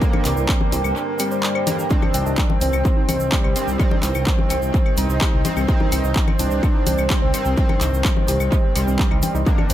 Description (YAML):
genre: melodic techno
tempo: 127 BPM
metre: 4/4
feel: straight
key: C minor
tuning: A4 = 445 Hz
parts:
  - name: soft supersaw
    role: melody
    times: 0.0-9.7 s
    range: G3 to Eb4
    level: -28 LUFS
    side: equal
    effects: sidechain pumping, analog delay
  - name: deep dark ambient pad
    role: sustained chords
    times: 0.0-9.7 s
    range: C4 to Bb5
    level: -32 LUFS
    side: equal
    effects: none
  - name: sync-sweep polysynth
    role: stabs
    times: 0.0-9.7 s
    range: G2 to C4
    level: -27 LUFS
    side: equal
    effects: chorus, sidechain pumping, analog delay
  - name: electronic kick drum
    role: drums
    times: 0.0-9.6 s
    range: none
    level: -18 LUFS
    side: equal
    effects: overdrive
  - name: tube shaker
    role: percussion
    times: 0.0-9.7 s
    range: none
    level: -34 LUFS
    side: right 5 dB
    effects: none
  - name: ethereal airy pad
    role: texture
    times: 0.0-9.7 s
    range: C4 to G5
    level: -30 LUFS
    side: right 2 dB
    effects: none
  - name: woody wave-folded pluck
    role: arpeggios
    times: 0.1-9.7 s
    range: G3 to Eb6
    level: -30 LUFS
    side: equal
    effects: chorus, sidechain pumping, analog delay
  - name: techno drum kit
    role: drums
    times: 0.1-9.7 s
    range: claves, congas, handclaps, hi-hat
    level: -25 LUFS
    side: left 3 dB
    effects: overdrive, sidechain pumping on perc, sidechain pumping on hats, analog delay
  - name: dark detuned saw bass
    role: bass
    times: 0.3-9.7 s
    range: C2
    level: -22 LUFS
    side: equal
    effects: sidechain pumping
room: light reverb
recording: echo-heavy mix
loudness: -17 LUFS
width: side -12 dB against mid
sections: 0.0-9.7 A section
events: break 1.0-1.9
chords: 0.0 Gm/C; 1.9 Cm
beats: | 0.02 0.49 0.96 1.43 | 1.91 2.38 2.85 3.32 | 3.79 4.27 4.74 5.21 | 5.68 6.16 6.63 7.10 | 7.58 8.05 8.52 8.99 | 9.46